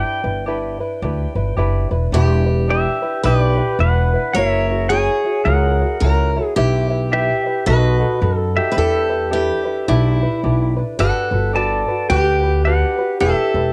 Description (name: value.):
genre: Hawaiian.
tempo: 108 BPM.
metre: 4/4.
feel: swing 60% on 8ths.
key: E minor.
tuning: A4 = 439 Hz.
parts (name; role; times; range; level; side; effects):
pedal steel guitar; melody; 0.0-13.7 s; F#4 to A5; -23 LUFS; equal; cassette tape.
tenor ukulele; accompaniment; 0.0-13.7 s; D4 to E5; -26 LUFS; equal; cassette tape.
upright bass; bass; 0.2-13.7 s; E1 to F#2; -21 LUFS; equal; none.
picked steel-string acoustic guitar; second line; 2.1-13.7 s; E4 to C#5; -24 LUFS; equal; cassette tape.
room: moderate studio ambience, RT60 0.5 s.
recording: home recording on cassette.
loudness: -18 LUFS.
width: mono.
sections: 0.0-2.1 A section; 2.1-11.0 B section; 11.0-13.7 A section.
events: none.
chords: 0.0 G6; 2.1 Em7; 4.3 F#7; 6.6 Em/B; 7.7 B7; 8.8 Em7; 11.0 Gmaj7; 13.2 Em7.